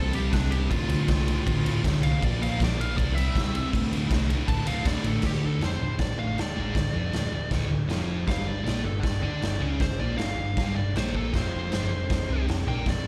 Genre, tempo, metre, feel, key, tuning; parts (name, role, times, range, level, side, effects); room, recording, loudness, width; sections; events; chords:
garage rock duo or trio; 158 BPM; 4/4; straight; D minor; A4 = 441 Hz
fuzz lead guitar; melody; 0.0-13.1 s; D4 to A5; -36 LUFS; equal; distortion, slapback echo
thick fuzz guitar; riff; 0.0-13.1 s; D2 to D4; -32 LUFS; equal; distortion
hollow-body short-scale picked electric bass; bass; 0.0-13.1 s; D1 to D2; -31 LUFS; equal; overdrive
raw garage drum kit; drums; 0.1-13.0 s; crash cymbal, kick drum, ride cymbal, snare drum; -31 LUFS; equal
little or no reverb; live gig heard through the venue's PA, recital hall reverb; -26 LUFS; mono
0.0-5.2 A section; 5.2-13.1 B section
lead electric guitar solo 5.2-13.1
0.0 C5; 0.7 Dm; 2.2 Bb5; 3.0 C; 3.7 D5; 5.2 Dm; 8.3 G5; 11.3 F5